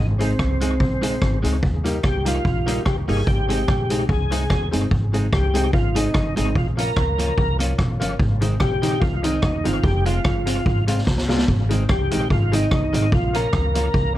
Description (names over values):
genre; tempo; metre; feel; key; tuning
ska; 146 BPM; 4/4; swing 55% on 8ths; Ab major; A4 = 440 Hz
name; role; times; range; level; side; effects
tonewheel organ; melody; 0.0-14.1 s; C4 to Bb4; -25 LUFS; equal; chorus vibrato, slow rotary speaker
upright bass; bass; 0.0-14.2 s; F1 to Eb2; -23 LUFS; equal; none
clean electric guitar; accompaniment; 0.2-13.9 s; Eb3 to F4; -29 LUFS; right 3 dB; none
dark upright piano; stabs; 0.2-14.2 s; Ab3 to Ab4; -29 LUFS; left 4 dB; tube saturation, analog delay
street-band drum kit; drums; 0.2-14.0 s; hi-hat, kick drum, rim click, snare drum; -22 LUFS; equal; analog delay
room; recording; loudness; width
light reverb; none; -18 LUFS; side -14 dB against mid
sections
0.0-4.9 A section; 4.9-14.2 B section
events
drum fill 11.1-11.5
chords
0.0 Ab; 1.6 Eb; 3.3 Ab; 6.6 Bbm; 8.2 Ab; 9.8 Fm; 11.5 Ab; 13.1 Bbm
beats
0.39 0.80 1.21 | 1.62 2.04 2.45 2.86 | 3.27 3.68 4.09 4.50 | 4.91 5.33 5.74 6.15 | 6.56 6.97 7.38 7.79 | 8.20 8.61 9.02 9.43 | 9.84 10.25 10.66 11.07 | 11.48 11.89 12.30 12.71 | 13.12 13.53 13.94